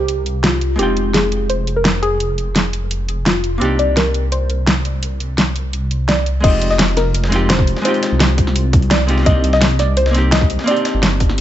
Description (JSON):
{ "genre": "liquid drum and bass", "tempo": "170 BPM", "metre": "4/4", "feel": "straight", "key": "F dorian", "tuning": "A4 = 441 Hz", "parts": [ { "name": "soft round pluck", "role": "melody", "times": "0.0-11.4 s", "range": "F4 to Eb5", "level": "-20 LUFS", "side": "equal", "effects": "chorus, cassette tape, dub echo" }, { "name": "archtop guitar, miked and amplified", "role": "accompaniment", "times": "0.0-11.4 s", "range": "Ab3 to G5", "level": "-22 LUFS", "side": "left 1 dB", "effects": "vintage 12-bit sampler grit, dub echo" }, { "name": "dark detuned saw bass", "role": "bass", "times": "0.0-11.4 s", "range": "F1 to C2", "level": "-18 LUFS", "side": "equal", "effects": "none" }, { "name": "pop drum kit", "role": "drums", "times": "0.1-11.4 s", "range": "crash cymbal, hi-hat, snare drum", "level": "-18 LUFS", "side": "equal", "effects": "none" }, { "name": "dusty soul sampler-style drum kit", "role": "drums", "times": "6.4-11.4 s", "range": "hi-hat, snare drum", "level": "-26 LUFS", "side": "equal", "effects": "high-pass filter on hats, high-pass filter on snare" }, { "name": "electronic kick drum", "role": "drums", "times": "6.4-11.3 s", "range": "none", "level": "-16 LUFS", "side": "equal", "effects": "none" } ], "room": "light reverb", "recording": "nothing above 7.9 kHz", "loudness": "-13 LUFS", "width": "side -12 dB against mid", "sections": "0.0-6.4 A section; 6.4-11.4 B section", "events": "drop 6.4-11.4", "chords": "0.0 Cm9; 0.8 Fm9; 3.6 Cm9; 6.4 Fm9; 9.3 Cm9", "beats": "0.09 0.44 | 0.79 1.14 1.50 1.85 | 2.20 2.56 2.91 3.26 | 3.62 3.97 4.32 4.67 | 5.03 5.38 5.73 6.08 | 6.44 6.79 7.14 7.50 | 7.85 8.20 8.56 8.91 | 9.26 9.62 9.97 10.32 | 10.67 11.03 11.38" }